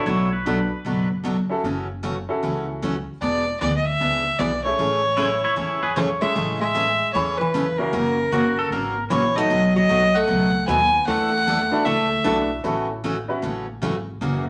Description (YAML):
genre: country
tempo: 153 BPM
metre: 4/4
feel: swing 65% on 8ths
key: A major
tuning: A4 = 442 Hz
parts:
  - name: pedal steel guitar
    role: second line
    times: 0.0-1.1, 5.2-9.0 s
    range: E4 to C#5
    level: -28 LUFS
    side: equal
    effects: none
  - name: bright upright piano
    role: accompaniment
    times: 0.0-13.4 s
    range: A3 to B4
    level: -28 LUFS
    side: equal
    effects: none
  - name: picked steel-string acoustic guitar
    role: accompaniment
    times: 0.1-14.4 s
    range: B2 to A4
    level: -28 LUFS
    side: equal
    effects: none
  - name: upright bass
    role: bass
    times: 0.1-14.5 s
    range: E1 to E2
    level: -34 LUFS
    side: equal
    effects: none
  - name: rich fiddle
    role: melody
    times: 3.2-12.5 s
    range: Bb4 to G#5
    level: -24 LUFS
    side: equal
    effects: none
  - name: archtop guitar, miked and amplified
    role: second line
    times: 6.0-12.5 s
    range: C#3 to B3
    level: -27 LUFS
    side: equal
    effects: none
room: wet studio reverb, RT60 0.7 s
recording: none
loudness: -22 LUFS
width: mono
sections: 0.0-6.4 A section; 6.4-14.5 B section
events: none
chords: 0.1 Bm7; 1.6 F#m7; 3.2 E7; 4.8 Amaj7; 7.9 F#7; 9.5 B7; 11.1 E9sus4; 12.6 A69